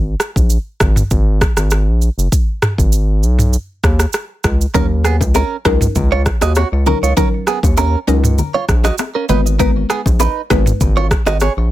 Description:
afrobeats; 99 BPM; 4/4; straight; Eb minor; A4 = 441 Hz
round analog bass; bass; 0.0-11.7 s; Gb1 to Eb2; -14 LUFS; equal
afro-pop drum kit; drums; 0.2-11.6 s; kick drum, rim click, shaker, toms; -16 LUFS; equal
mallet-like synth pluck; accompaniment; 4.7-10.8 s; Gb3 to Cb5; -18 LUFS; left 2 dB; chorus, phaser
direct-recorded clean electric guitar; riff; 4.7-11.5 s; Cb4 to Eb5; -19 LUFS; right 6 dB; phaser, ping-pong delay
congas and bongos; percussion; 4.7-11.6 s; -23 LUFS; left 6 dB
little or no reverb; -12 LUFS; side -15 dB against mid
0.0-11.7 A section
0.0 N.C.; 4.7 Ebm7; 9.3 Abm

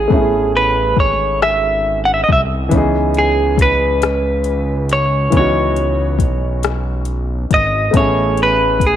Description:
slow six-eight R&B; 46 BPM (dotted quarters); 6/8; straight; C# minor; A4 = 439 Hz
clean electric guitar; melody; 0.0-9.0 s; G#4 to F#5; -16 LUFS; right 1 dB; slapback echo
warm grand piano; accompaniment; 0.0-9.0 s; E3 to G#4; -20 LUFS; equal
fat analog bass; bass; 0.0-9.0 s; G#1 to C#2; -19 LUFS; right 1 dB
smooth R&B drum kit; drums; 0.1-9.0 s; hi-hat, kick drum, rim click; -18 LUFS; left 3 dB
light reverb, digital ambience; 1960s-style stereo; -13 LUFS; side -10 dB against mid
0.0-9.0 A section
hi-hats muted 0.1-2.7
0.0 Amaj9; 2.7 C#m7; 7.9 Amaj9

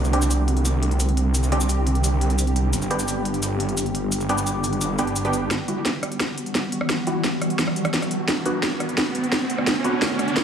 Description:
dark technical drum and bass; 173 BPM; 4/4; straight; E minor; A4 = 440 Hz
swarming drone; sustained chords; 0.0-10.4 s; D3 to G4; -26 LUFS; equal; built-in reverb
snarling distorted saw bass; bass; 0.0-5.5 s; G1 to C2; -22 LUFS; right 1 dB; distortion, overdrive
drum and bass drum kit; drums; 0.0-10.4 s; cabasa, hi-hat, rim click, snare drum; -25 LUFS; equal
orchestra-hit-like synth stab; stabs; 0.1-9.9 s; G3 to G4; -27 LUFS; right 1 dB; built-in reverb, digital delay
riser; sound effects; 7.5-10.4 s; -30 LUFS; right 1 dB
moderate lush hall reverb, RT60 1.7 s; heavily compressed radio sound, multiband compression, small room ambience; -20 LUFS; side -8 dB against mid
0.0-5.5 A section; 5.5-10.4 B section
build-up 5.5-10.4; drum fill 5.5-10.4; riser 7.5-10.4
0.0 Csus2; 2.7 G; 5.5 Emadd9; 8.3 D6

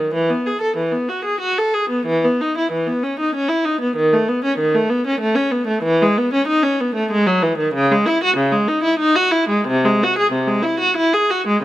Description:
classical, baroque-style suite movement for unaccompanied viola; 94 BPM; 3/4; rubato; E major; A4 = 440 Hz
rich viola; solo; 0.0-11.6 s; B#2 to A4; -15 LUFS; equal
light reverb; close, detailed microphones; -15 LUFS; side -14 dB against mid
0.1-11.6 A section

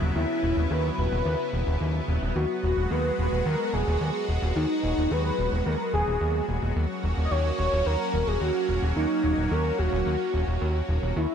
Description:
synthwave; 109 BPM; 4/4; straight; Eb phrygian; A4 = 440 Hz
lush unison pad; sustained chords; 0.0-11.3 s; Db3 to Gb4; -30 LUFS; equal; chorus, phaser
fat analog bass; bass; 0.0-11.3 s; Eb1 to Eb2; -26 LUFS; equal
warm velvety synth lead; melody; 0.2-11.3 s; Eb4 to Eb5; -28 LUFS; equal; chorus, digital delay
light reverb, digital ambience; bright 1980s-style digital production; -23 LUFS; side -8 dB against mid
0.0-11.3 A section
0.0 Gb7sus4/Eb; 2.4 Abm7/Eb; 6.8 Ebm7

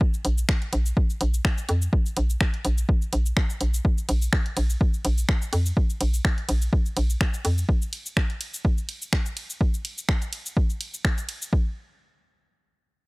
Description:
minimal techno; 125 BPM; 4/4; swing 55% on 16ths; A4 = 440 Hz
electronic kick drum; drums; 0.0-11.6 s; -22 LUFS; equal; overdrive
techno drum kit; drums; 0.1-11.5 s; finger snaps, hi-hat, ride cymbal, shaker; -30 LUFS; equal
hollow knocking FM bass; bass; 0.2-7.6 s; Bb1 to F2; -22 LUFS; equal; sidechain pumping
little or no reverb; dry, gritty hardware recording; -22 LUFS; side -27 dB against mid
0.0-11.5 A section; 11.5-13.1 B section
drop 0.0-11.5

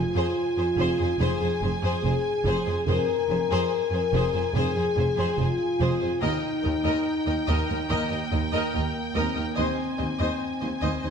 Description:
cinematic, epic orchestral film score; 72 BPM; 4/4; straight; F minor; A4 = 440 Hz
clear symphonic violin section; melody; 0.0-11.1 s; G5 to Ab5; -34 LUFS; equal
rich studio violin section; second line; 0.0-11.1 s; C5 to Eb5; -33 LUFS; left 3 dB
dark French horn section; sustained chords; 0.0-11.1 s; Bb3 to Bb4; -27 LUFS; left 3 dB
clear symphonic double bass section; bass; 0.0-10.9 s; F1 to Eb2; -29 LUFS; right 2 dB
rich symphonic cello section; bass; 0.0-11.1 s; Eb2 to F2; -30 LUFS; right 2 dB
rich symphonic viola section; accompaniment; 0.1-11.1 s; Ab4 to C5; -34 LUFS; right 1 dB
moderate scoring stage reverb, RT60 1.7 s; dark, warm production; -23 LUFS; side -6 dB against mid
0.0-11.1 A section
0.0 Fm; 6.2 Eb; 9.6 Ab/Eb

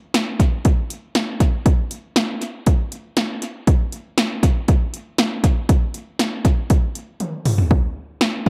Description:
pop; 119 BPM; 4/4; straight
punchy analog drum machine; drums; 0.1-8.5 s; hi-hat, kick drum, snare drum, toms; -19 LUFS; equal; analog delay
light reverb; echo-heavy mix; -20 LUFS; mono
0.0-7.7 A section
drum fill 7.2-7.7

